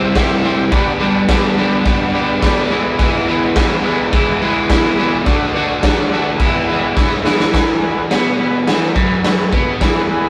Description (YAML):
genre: garage rock duo or trio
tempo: 106 BPM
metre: 4/4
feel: straight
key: unclear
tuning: A4 = 440 Hz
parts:
  - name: overdriven combo organ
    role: sustained chords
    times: 0.0-10.3 s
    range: F#4 to E5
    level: -25 LUFS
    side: equal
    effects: none
  - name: overdriven electric guitar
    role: riff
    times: 0.0-10.3 s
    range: E2 to F#4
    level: -18 LUFS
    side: equal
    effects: none
  - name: raw garage drum kit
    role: drums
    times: 0.2-9.9 s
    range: crash cymbal, kick drum, snare drum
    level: -18 LUFS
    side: equal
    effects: none
room: moderate small room ambience, RT60 0.5 s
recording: rough rehearsal-room recording, warm saturation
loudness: -15 LUFS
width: mono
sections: 0.0-7.5 A section; 7.5-10.3 B section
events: drum fill 7.0-7.5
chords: 0.0 C; 0.7 G; 2.7 E; 5.3 D; 6.4 E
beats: 0.15 | 0.72 1.29 1.86 2.42 | 2.99 3.56 4.13 4.70 | 5.26 5.83 6.40 6.97 | 7.54 8.11 8.68 9.24 | 9.81